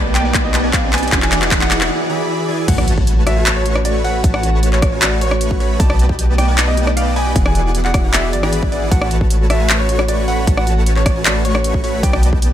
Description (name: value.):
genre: future bass.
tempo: 154 BPM.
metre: 4/4.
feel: half-time.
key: A major.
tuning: A4 = 439 Hz.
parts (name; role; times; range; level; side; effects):
airy breathy pad; sustained chords; 0.1-12.5 s; E3 to G#4; -28 LUFS; right 1 dB; chorus, sidechain pumping.
concert harp; arpeggios; 0.0-12.5 s; F#4 to F#5; -27 LUFS; left 5 dB; sidechain pumping, tape echo.
supersaw chords; riff; 0.0-12.5 s; E3 to C#6; -22 LUFS; right 1 dB; sidechain pumping, tape echo.
warm 808-style bass; bass; 0.0-12.5 s; E1 to B1; -17 LUFS; equal; sidechain pumping.
riser and impact; sound effects; 0.0-4.2 s; none; -24 LUFS; right 2 dB; none.
bright concert grand piano; melody; 0.1-12.2 s; C#5 to A5; -23 LUFS; right 1 dB; sidechain pumping, ping-pong delay.
big-room dance drum kit; drums; 0.1-12.5 s; crash cymbal, handclaps, hi-hat, rim click; -19 LUFS; equal; overdrive.
electronic kick drum; drums; 0.3-12.4 s; none; -18 LUFS; equal; overdrive.
room: light reverb.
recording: none.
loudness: -13 LUFS.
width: side -11 dB against mid.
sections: 0.0-2.7 A section; 2.7-12.5 B section.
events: build-up 0.0-2.7; drum fill 0.0-1.9; riser 0.0-1.9; filter sweep on harp 0.0-2.7; break 1.9-2.7; drop 2.7-12.5; impact 2.7-4.2.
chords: 0.0 B7alt; 1.1 E9; 2.7 A69; 5.8 B7alt; 7.4 E9; 8.9 A69; 12.0 B7alt.